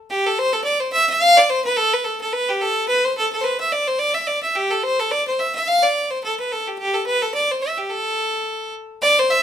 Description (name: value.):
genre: celtic folk.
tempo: 215 BPM.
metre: 4/4.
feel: swing 56% on 8ths.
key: A minor.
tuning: A4 = 440 Hz.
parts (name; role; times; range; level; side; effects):
clear fiddle; solo; 0.1-9.4 s; G4 to F5; -17 LUFS; equal; none.
room: moderate studio reverb, RT60 0.6 s.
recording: minimal, uncompressed stereo recording.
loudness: -17 LUFS.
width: side -9 dB against mid.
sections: 0.1-9.0 A section.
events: none.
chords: none.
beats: | 0.09 0.36 0.64 0.92 | 1.20 1.48 1.76 2.04 | 2.32 2.60 2.88 3.15 | 3.43 3.71 3.99 4.27 | 4.55 4.83 5.11 5.39 | 5.67 5.94 6.22 6.50 | 6.78 7.06 7.34 7.62 | 7.90 8.18 8.46 8.73 | 9.01 9.29.